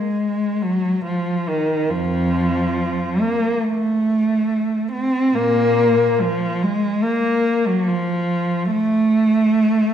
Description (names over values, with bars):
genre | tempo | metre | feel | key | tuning
classical, free, expressive piece for unaccompanied cello | 70 BPM | 4/4 | rubato | unclear | A4 = 439 Hz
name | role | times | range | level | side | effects
rich cello | solo | 0.0-9.9 s | F2 to C4 | -17 LUFS | equal | none
room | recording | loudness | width
wet scoring stage reverb, RT60 1.8 s | minimal, uncompressed stereo recording | -17 LUFS | side -9 dB against mid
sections
0.0-9.9 A section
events
none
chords
none